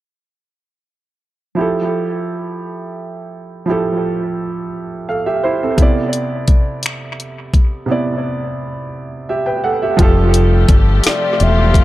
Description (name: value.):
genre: slow six-eight R&B.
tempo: 57 BPM (dotted quarters).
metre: 6/8.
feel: straight.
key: F lydian.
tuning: A4 = 440 Hz.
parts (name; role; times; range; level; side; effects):
clear concert grand piano; accompaniment; 1.5-11.8 s; C3 to G5; -18 LUFS; right 2 dB; analog delay.
smooth R&B drum kit; drums; 5.8-11.8 s; finger snaps, hi-hat, kick drum, snare drum; -13 LUFS; left 1 dB; none.
warm studio string section; sustained chords; 10.0-11.8 s; F3 to G4; -23 LUFS; left 3 dB; none.
deep dub fingered electric bass; bass; 10.0-11.8 s; E1 to G1; -12 LUFS; left 1 dB; none.
warm horn section; stabs; 11.0-11.8 s; C3 to F4; -20 LUFS; left 5 dB; none.
hollow clarinet-like synth lead; melody; 11.1-11.8 s; D5 to F5; -18 LUFS; left 1 dB; chorus.
room: light reverb, small room reverb.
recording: echo-heavy mix.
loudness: -14 LUFS.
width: side -16 dB against mid.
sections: 1.6-10.0 A section; 10.0-11.8 B section.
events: break 7.9-10.0.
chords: 1.6 Fmaj9; 5.8 Cmaj9; 10.0 Fmaj9.